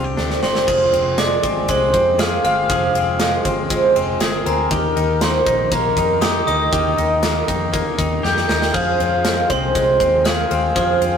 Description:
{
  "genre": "jangly indie pop",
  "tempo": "119 BPM",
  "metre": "4/4",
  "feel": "straight",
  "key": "unclear",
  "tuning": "A4 = 443 Hz",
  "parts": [
    { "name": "warm velvety synth lead", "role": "melody", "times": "0.0-11.2 s", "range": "Bb4 to G5", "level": "-20 LUFS", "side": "equal", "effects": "chorus" },
    { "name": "picked twelve-string acoustic guitar", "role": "accompaniment", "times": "0.0-11.2 s", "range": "F2 to Ab4", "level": "-24 LUFS", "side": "right 5 dB", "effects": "none" },
    { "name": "direct-recorded clean electric guitar", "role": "arpeggios", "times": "0.0-11.2 s", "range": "Eb3 to Ab4", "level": "-23 LUFS", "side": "left 3 dB", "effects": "none" },
    { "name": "vintage muted fingered electric bass", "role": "bass", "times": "0.0-11.2 s", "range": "F1 to F2", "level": "-25 LUFS", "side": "left 1 dB", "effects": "none" },
    { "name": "big rock drum kit", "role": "drums", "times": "0.2-11.1 s", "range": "crash cymbal, kick drum, ride cymbal, snare drum", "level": "-22 LUFS", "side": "equal", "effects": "none" },
    { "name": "glockenspiel with hard plastic mallets", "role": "second line", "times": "0.4-11.2 s", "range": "Bb5 to G6", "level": "-24 LUFS", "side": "right 1 dB", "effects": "none" }
  ],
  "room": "wet stone room reverb, RT60 1.0 s",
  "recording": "rough rehearsal-room recording",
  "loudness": "-15 LUFS",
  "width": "side -7 dB against mid",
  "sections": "0.7-11.2 A section",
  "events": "drum fill 0.2-0.7, 8.2-8.7",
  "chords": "0.0 Csus2; 0.7 Fm; 4.7 Eb; 8.7 Fm"
}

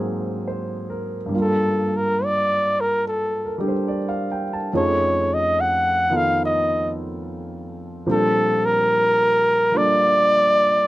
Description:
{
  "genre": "jazz ballad",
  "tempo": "71 BPM",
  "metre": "4/4",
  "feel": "swing 67% on 8ths",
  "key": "Bb major",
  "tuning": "A4 = 440 Hz",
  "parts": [
    { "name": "warm concert grand piano", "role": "accompaniment", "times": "0.0-10.9 s", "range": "F2 to A5", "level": "-24 LUFS", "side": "right 1 dB", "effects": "none" },
    { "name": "warm flugelhorn", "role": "melody", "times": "1.4-10.9 s", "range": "A4 to Gb5", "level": "-18 LUFS", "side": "equal", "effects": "none" }
  ],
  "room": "little or no reverb",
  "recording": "close, detailed microphones, lossy compression artefacts",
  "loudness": "-18 LUFS",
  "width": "side -17 dB against mid",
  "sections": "0.0-10.9 A section",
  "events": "none",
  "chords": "0.0 Ab9; 1.3 Gm9; 4.7 F7alt; 8.1 Bbmaj13"
}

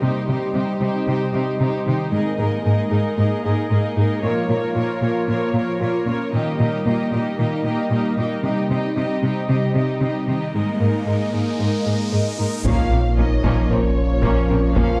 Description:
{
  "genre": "cinematic, hybrid orchestral and electronic film score",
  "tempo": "114 BPM",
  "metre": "4/4",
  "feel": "straight",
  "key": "Bb dorian",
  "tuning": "A4 = 440 Hz",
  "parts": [
    { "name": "clear symphonic violin section", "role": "second line", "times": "0.0-15.0 s", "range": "C4 to Eb5", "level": "-32 LUFS", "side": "equal", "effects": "none" },
    { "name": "warm symphonic viola section", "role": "accompaniment", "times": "0.0-15.0 s", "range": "F3 to Ab4", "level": "-30 LUFS", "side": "equal", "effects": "none" },
    { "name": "warm analog pad", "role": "sustained chords", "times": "0.0-15.0 s", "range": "F3 to Eb5", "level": "-27 LUFS", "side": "equal", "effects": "chorus" },
    { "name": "harp-like synth pluck", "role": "arpeggios", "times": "0.0-14.9 s", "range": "C3 to Bb4", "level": "-30 LUFS", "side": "equal", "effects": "chorus, digital delay" },
    { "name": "clear symphonic cello section", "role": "bass", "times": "0.0-14.8 s", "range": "Ab2 to C3", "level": "-25 LUFS", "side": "equal", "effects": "none" },
    { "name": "riser and sub drop", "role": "sound effects", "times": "10.6-14.8 s", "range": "none", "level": "-33 LUFS", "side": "equal", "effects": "none" },
    { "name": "warm symphonic violin section", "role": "melody", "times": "12.6-15.0 s", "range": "Db5 to F5", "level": "-32 LUFS", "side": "equal", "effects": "none" },
    { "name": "mellow French horn section", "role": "sustained chords", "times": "12.6-15.0 s", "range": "Db4 to F4", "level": "-30 LUFS", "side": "equal", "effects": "none" },
    { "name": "warm trombone section", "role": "sustained chords", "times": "12.6-15.0 s", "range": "Bb2 to F3", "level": "-30 LUFS", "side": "equal", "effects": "none" },
    { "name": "rich symphonic double bass section", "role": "bass", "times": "12.6-14.8 s", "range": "Bb1", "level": "-28 LUFS", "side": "equal", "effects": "none" },
    { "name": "sub bass with octave", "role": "bass", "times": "12.6-15.0 s", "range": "Bb1", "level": "-23 LUFS", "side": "equal", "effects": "none" },
    { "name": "taiko ensemble", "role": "drums", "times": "12.6-15.0 s", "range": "none", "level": "-28 LUFS", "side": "equal", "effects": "none" }
  ],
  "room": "moderate recital hall reverb, RT60 1.4 s",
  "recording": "dark, warm production",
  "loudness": "-20 LUFS",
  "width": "mono",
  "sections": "0.0-12.7 A section; 12.7-15.0 B section",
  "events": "build-up 0.0-12.7; riser 10.6-12.7; impact 12.7-14.8",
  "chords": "0.0 Cm; 2.1 Absus2; 4.2 Bbm; 6.3 Eb/Bb; 8.4 Cm; 10.5 Absus2; 12.7 Bbm"
}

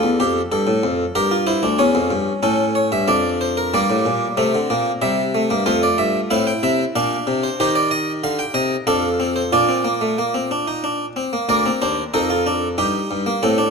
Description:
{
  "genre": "classical, baroque-style 4-part fugue for harpsichord",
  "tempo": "93 BPM",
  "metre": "3/4",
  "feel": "straight",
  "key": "Bb major from 7.6 s",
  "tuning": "A4 = 440 Hz",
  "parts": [
    { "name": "harpsichord", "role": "solo", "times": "0.0-13.7 s", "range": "D2 to G5", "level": "-17 LUFS", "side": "equal", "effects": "none" }
  ],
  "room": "moderate recital hall reverb, RT60 1.6 s",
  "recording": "close, detailed microphones",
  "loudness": "-17 LUFS",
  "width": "side -5 dB against mid",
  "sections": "0.0-3.7 A section; 3.7-11.5 B section; 11.5-13.7 C section",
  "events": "none",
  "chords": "0.0 Dm (rootless); 1.2 Gm; 1.8 A7/E; 3.1 Dm/F; 3.7 Gm; 5.0 C; 5.7 Fmaj7; 6.9 Bb; 7.6 Cm/Eb; 8.9 F; 9.5 Bb; 11.5 Bb/D; 12.8 Eb/G"
}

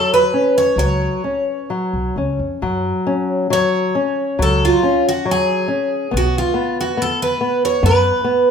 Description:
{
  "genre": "fado-style ballad",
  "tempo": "63-71 BPM",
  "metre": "4/4",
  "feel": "rubato",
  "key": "F# harmonic minor",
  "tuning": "A4 = 441 Hz",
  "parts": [
    { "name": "picked twelve-string acoustic guitar", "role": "melody", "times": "0.0-8.5 s", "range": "E#4 to C#5", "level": "-17 LUFS", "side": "right 2 dB", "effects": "none" },
    { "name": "nylon-string guitar", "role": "accompaniment", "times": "0.0-8.5 s", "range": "F#3 to C#4", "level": "-19 LUFS", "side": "left 3 dB", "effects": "none" },
    { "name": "upright bass", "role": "bass", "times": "0.8-8.1 s", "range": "B1 to F#2", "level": "-20 LUFS", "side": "equal", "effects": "none" }
  ],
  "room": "light reverb",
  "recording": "minimal, uncompressed stereo recording",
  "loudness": "-15 LUFS",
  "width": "side -7 dB against mid",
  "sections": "0.0-2.6 A section; 2.6-8.5 A section",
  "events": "none",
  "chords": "0.0 F#5; 2.6 F#sus2; 6.1 B5"
}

